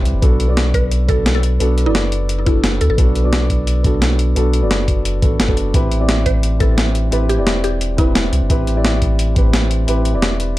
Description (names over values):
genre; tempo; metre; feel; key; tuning
liquid drum and bass; 174 BPM; 4/4; straight; unclear; A4 = 441 Hz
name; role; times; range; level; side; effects
dark grand piano; accompaniment; 0.0-10.6 s; B3 to D5; -21 LUFS; equal; ping-pong delay
saturated sub bass; bass; 0.0-10.6 s; E1 to D2; -17 LUFS; equal; none
breakbeat sampler-style drum kit; drums; 0.1-10.5 s; hi-hat, snare drum; -20 LUFS; equal; none
electronic kick drum; drums; 0.2-9.4 s; none; -16 LUFS; equal; none
mallet-like synth pluck; melody; 0.7-3.0, 6.3-8.2 s; E4 to C5; -24 LUFS; equal; chorus, ping-pong delay
room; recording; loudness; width
digital ambience; dark, warm production; -13 LUFS; side -17 dB against mid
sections
0.0-10.6 A section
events
none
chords
0.2 Bm7; 5.7 Am7